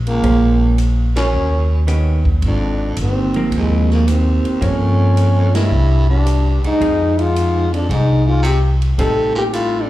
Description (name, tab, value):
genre	jazz, small-group swing and bop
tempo	110 BPM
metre	4/4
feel	swing 69% on 8ths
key	unclear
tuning	A4 = 440 Hz
part	upright bass	bass	0.0-9.9 s	G1 to G2	-15 LUFS	equal	none
part	breathy trombone	melody	0.1-9.9 s	Ab3 to A4	-19 LUFS	left 1 dB	slapback echo
part	breathy baritone saxophone	second line	0.1-9.9 s	C2 to C3	-24 LUFS	right 2 dB	slapback echo
part	swinging big-band drum kit	drums	0.1-9.7 s	hi-hat, kick drum, ride cymbal, rim click, snare drum	-27 LUFS	equal	none
part	hollow-body jazz guitar	accompaniment	0.2-9.8 s	Eb3 to C5	-23 LUFS	right 3 dB	slapback echo
room	studio ambience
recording	live gig heard through the venue's PA, club reverb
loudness	-13 LUFS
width	side -15 dB against mid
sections	0.0-9.9 A section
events	band accent 1.1, 5.4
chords	0.2 Bbm9; 1.3 Eb7alt; 2.4 Ab69; 4.6 Gm7b5; 5.7 C5; 6.8 Fm7; 9.0 Am7b5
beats	| 0.23 0.78 1.33 1.88 | 2.42 2.97 3.52 4.07 | 4.62 5.16 5.71 6.26 | 6.81 7.35 7.90 8.45 | 8.99 9.54